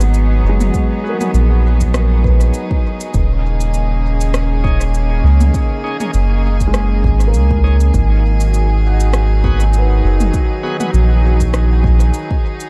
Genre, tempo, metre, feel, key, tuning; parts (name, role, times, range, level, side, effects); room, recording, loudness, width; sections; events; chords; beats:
ambient dub; 100 BPM; 4/4; swing 55% on 16ths; G# minor; A4 = 441 Hz
rich chamber string section; sustained chords; 0.0-12.7 s; C#3 to G#4; -24 LUFS; equal
felt-muted upright piano; arpeggios; 0.0-12.7 s; G#3 to F#5; -29 LUFS; equal; tape echo
bright tonewheel organ; stabs; 0.0-10.9 s; B3 to G#4; -32 LUFS; equal; overdrive, slow rotary speaker, low-pass filter, dub echo
soft dub sub bass; bass; 0.0-12.1 s; D#1 to C#2; -15 LUFS; equal
organic electronic drum kit; drums; 0.0-12.7 s; rim click, shaker, toms; -28 LUFS; equal; dub echo
electronic kick drum; drums; 0.7-12.4 s; -20 LUFS; equal
little or no reverb; dark, warm production; -14 LUFS; mono
0.0-12.7 A section
filter sweep on tonewheel organ 0.0-12.7
0.0 G#m7; 3.1 D#7sus4; 7.9 G#m7
0.14 | 0.74 1.34 1.94 2.54 | 3.14 3.74 4.34 4.94 | 5.54 6.14 6.74 7.34 | 7.94 8.54 9.14 9.74 | 10.34 10.94 11.54 12.14